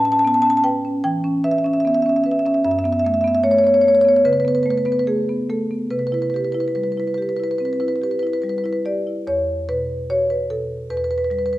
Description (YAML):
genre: classical, contemporary piece for solo marimba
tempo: 74 BPM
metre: 4/4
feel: rubato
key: E dorian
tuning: A4 = 441 Hz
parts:
  - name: marimba with soft mallets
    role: solo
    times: 0.0-11.6 s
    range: E2 to A5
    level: -17 LUFS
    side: equal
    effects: none
room: moderate recital hall reverb, RT60 1.4 s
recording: close, detailed microphones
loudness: -17 LUFS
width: side -16 dB against mid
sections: 0.0-9.3 A section; 9.3-11.6 B section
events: none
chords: 0.0 Aadd9; 2.6 F#m7; 5.9 Cmaj7; 9.3 Emadd9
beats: 0.24 1.03 1.83 | 2.64 3.44 4.25 5.07 | 5.90 6.75 7.60 8.44 | 9.28 10.10 10.90